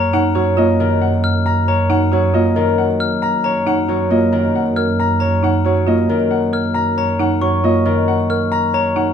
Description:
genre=classical, minimalist pattern music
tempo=136 BPM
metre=4/4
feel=straight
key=F# major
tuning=A4 = 440 Hz
part: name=clear concert grand piano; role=melody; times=0.0-9.1 s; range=A#4 to A#5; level=-20 LUFS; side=left 4 dB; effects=none
part: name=Celtic harp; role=accompaniment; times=0.0-9.1 s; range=D#3 to A#3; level=-19 LUFS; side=left 1 dB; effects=none
part: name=glockenspiel with soft plastic mallets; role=arpeggios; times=0.0-9.0 s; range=A#5 to E#6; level=-24 LUFS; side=left 8 dB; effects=none
part: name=rich chamber double bass section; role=bass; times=0.0-9.1 s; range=F#2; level=-20 LUFS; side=right 2 dB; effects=none
part: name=folk marimba with medium hard mallets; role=arpeggios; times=0.1-9.1 s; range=D#4 to A#4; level=-22 LUFS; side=right 6 dB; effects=none
room=moderate large studio reverb, RT60 0.9 s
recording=none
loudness=-14 LUFS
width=side -8 dB against mid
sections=0.0-9.1 A section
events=none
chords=0.0 F#maj7

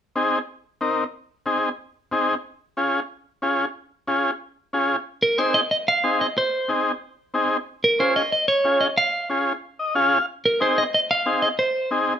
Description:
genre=latin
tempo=184 BPM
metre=4/4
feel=straight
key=Ab major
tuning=A4 = 439 Hz
part: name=overdriven combo organ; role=accompaniment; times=0.2-12.1 s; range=C4 to F5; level=-21 LUFS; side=left 1 dB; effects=none
part: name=clean electric guitar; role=melody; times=5.2-11.9 s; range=Bb4 to F5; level=-20 LUFS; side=right 1 dB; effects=spring reverb
room=moderate studio reverb, RT60 0.6 s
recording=minimal, uncompressed stereo recording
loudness=-20 LUFS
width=side -9 dB against mid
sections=0.0-5.1 A section; 5.1-12.2 B section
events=transistor combo organ fill 9.6-10.3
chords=0.0 Ab; 2.4 Db; 5.1 Ab; 7.7 Db; 10.3 Ab

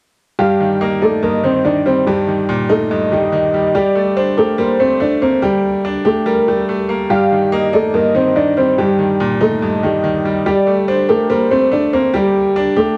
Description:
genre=hip hop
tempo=143 BPM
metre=4/4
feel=half-time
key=unclear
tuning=A4 = 440 Hz
part: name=dark concert grand piano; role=melody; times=0.4-13.0 s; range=G3 to D5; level=-17 LUFS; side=equal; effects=cassette tape
part: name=warm velvety synth lead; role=second line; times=0.4-11.7 s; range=Bb4 to F5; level=-21 LUFS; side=equal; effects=chorus, cassette tape, analog delay
part: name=bright grand piano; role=accompaniment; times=0.4-13.0 s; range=G2 to G4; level=-22 LUFS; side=equal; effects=cassette tape
room=moderate spring reverb, RT60 1.3 s, small room ambience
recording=home recording on cassette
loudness=-15 LUFS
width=mono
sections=0.4-13.0 A section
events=none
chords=0.4 Eb/G; 3.7 Gmadd9; 7.1 Eb/G; 10.5 Gmadd9

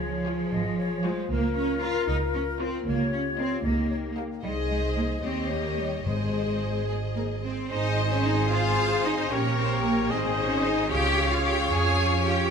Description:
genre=quick classical-period movement for symphony orchestra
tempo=75 BPM (dotted quarters)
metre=6/8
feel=straight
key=Ab major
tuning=A4 = 441 Hz
part: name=hollow small flute group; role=second line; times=0.0-12.5 s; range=Bb4 to Ab5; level=-33 LUFS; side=left 3 dB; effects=none
part: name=mellow French horn section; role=sustained chords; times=0.0-12.5 s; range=Bb3 to Db5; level=-33 LUFS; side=left 5 dB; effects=none
part: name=rich studio double bass section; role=bass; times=0.0-12.5 s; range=Ab1 to F2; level=-30 LUFS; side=right 3 dB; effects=none
part: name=warm studio cello section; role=bass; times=0.0-12.5 s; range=F3 to Ab4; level=-29 LUFS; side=right 2 dB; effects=none
part: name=rich studio violin section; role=melody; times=0.3-12.5 s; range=C5 to F5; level=-37 LUFS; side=left 4 dB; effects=none
part: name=rich symphonic violin section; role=second line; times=0.3-12.5 s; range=Ab4 to Ab5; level=-35 LUFS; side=left 1 dB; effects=none
part: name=clear studio viola section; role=accompaniment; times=0.3-12.5 s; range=F4 to Db5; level=-32 LUFS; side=left 1 dB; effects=none
part: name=timpani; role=percussion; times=6.1-6.8 s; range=Ab2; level=-34 LUFS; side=left 2 dB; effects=none
part: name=clear clarinet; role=second line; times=7.7-12.5 s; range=Ab4 to Bb4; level=-35 LUFS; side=left 4 dB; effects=none
part: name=clear oboe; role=second line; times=7.7-12.5 s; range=C5 to Eb5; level=-33 LUFS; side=left 2 dB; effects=none
room=moderate scoring stage reverb, RT60 2.0 s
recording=none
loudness=-24 LUFS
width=side -6 dB against mid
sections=0.0-7.7 A section; 7.7-12.5 B section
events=none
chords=0.0 Db; 1.3 Bbm/Db; 2.9 Eb7/Db; 4.4 Ab/C; 5.2 Eb7; 6.1 Ab; 9.3 Gdim/Bb; 10.1 Ab; 10.9 Db

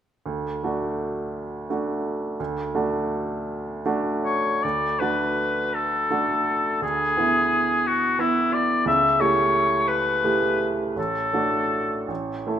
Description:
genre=classical, romantic duo for oboe and grand piano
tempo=49-60 BPM (dotted quarters)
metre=6/8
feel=rubato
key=D major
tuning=A4 = 442 Hz
part: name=bright grand piano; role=accompaniment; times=0.3-12.6 s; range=A1 to A4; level=-25 LUFS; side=right 3 dB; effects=none
part: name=clear oboe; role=melody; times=4.2-12.1 s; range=E4 to E5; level=-21 LUFS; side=left 2 dB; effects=none
room=moderate recital hall reverb, RT60 1.8 s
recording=none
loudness=-21 LUFS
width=side -9 dB against mid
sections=0.3-4.6 A section; 4.6-12.6 B section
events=none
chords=0.3 D; 6.8 E7/D; 8.9 A7/C#; 11.0 D/A; 12.1 A5

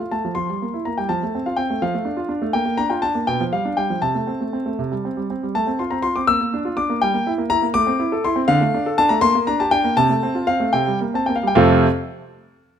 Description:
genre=classical-period piano sonatina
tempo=81 BPM (dotted quarters)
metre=6/8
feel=straight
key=F major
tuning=A4 = 441 Hz
part: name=clear grand piano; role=solo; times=0.0-11.9 s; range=F2 to E6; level=-18 LUFS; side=equal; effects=none
room=moderate recital hall reverb, RT60 1.3 s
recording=close, detailed microphones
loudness=-17 LUFS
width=side -8 dB against mid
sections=0.0-11.6 A section; 11.6-12.8 B section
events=slowing down 7.8-11.6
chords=0.4 Edim/F; 1.1 F; 1.8 Dm/F; 2.6 Bb6; 3.3 G7/B; 4.0 Am/C; 4.8 C5; 5.6 F/A; 6.3 Bb; 7.0 Edim/G; 7.8 Am; 8.5 Dm; 9.2 Gm/Bb; 10.0 F/C; 10.8 C5; 11.6 F

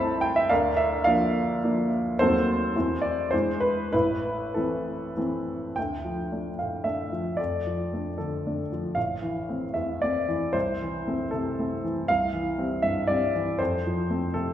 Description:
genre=classical, romantic character piece for solo piano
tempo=96-121 BPM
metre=3/4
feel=rubato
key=A minor, D minor from 5.8 s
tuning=A4 = 440 Hz
part: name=warm baby grand piano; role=solo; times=0.0-14.5 s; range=A1 to B5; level=-24 LUFS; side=equal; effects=none
room=wet recital hall reverb, RT60 1.6 s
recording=heard from further back in the room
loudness=-24 LUFS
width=side -11 dB against mid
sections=0.0-5.8 A section; 5.8-14.5 B section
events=none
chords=0.0 Am/C; 0.5 Bb/D; 2.2 D#dim7; 2.7 Am/E; 3.3 E7; 3.9 Am; 5.8 Dm; 7.4 Dm/F; 9.0 Am; 10.5 Am/C; 12.1 C; 13.6 F

